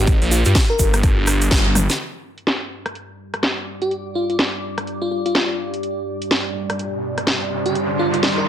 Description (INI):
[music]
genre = bass house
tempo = 125 BPM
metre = 4/4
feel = swing 60% on 16ths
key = G minor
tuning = A4 = 437 Hz
[part]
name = bell-like FM electric piano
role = melody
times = 0.0-8.5 s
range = F4 to Bb4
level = -24 LUFS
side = equal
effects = chorus, ping-pong delay
[part]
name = phased detuned saw bass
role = bass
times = 0.0-1.9 s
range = G1 to G2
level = -17 LUFS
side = equal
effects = phaser, overdrive, sidechain pumping
[part]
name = electronic kick drum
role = drums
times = 0.1-1.6 s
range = none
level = -17 LUFS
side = equal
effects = none
[part]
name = house drum kit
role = drums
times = 0.1-8.3 s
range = hi-hat, rim click, snare drum, toms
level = -21 LUFS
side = equal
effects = low-pass filter on hats, low-pass filter on snare, low-pass filter on toms, low-pass filter on room
[part]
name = tube shaker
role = percussion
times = 0.1-2.0 s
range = none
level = -27 LUFS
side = right 3 dB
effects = none
[part]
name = deep dark ambient pad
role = texture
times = 3.3-8.5 s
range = G3 to D6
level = -26 LUFS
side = right 1 dB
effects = chorus, built-in reverb, sidechain pumping
[part]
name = riser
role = sound effects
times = 6.6-8.5 s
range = none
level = -25 LUFS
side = equal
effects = none
[sound]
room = light reverb, digital ambience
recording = none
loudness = -17 LUFS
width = side -10 dB against mid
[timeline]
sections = 0.0-2.0 A section; 2.0-8.5 B section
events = band accent 1.5; drum fill 1.8; riser 6.6-8.5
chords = 0.0 Fmadd9 (rootless); 2.0 G5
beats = | 0.07 0.55 1.03 1.51 | 1.99 2.47 2.95 3.43 | 3.91 4.39 4.87 5.35 | 5.83 6.31 6.79 7.27 | 7.75 8.23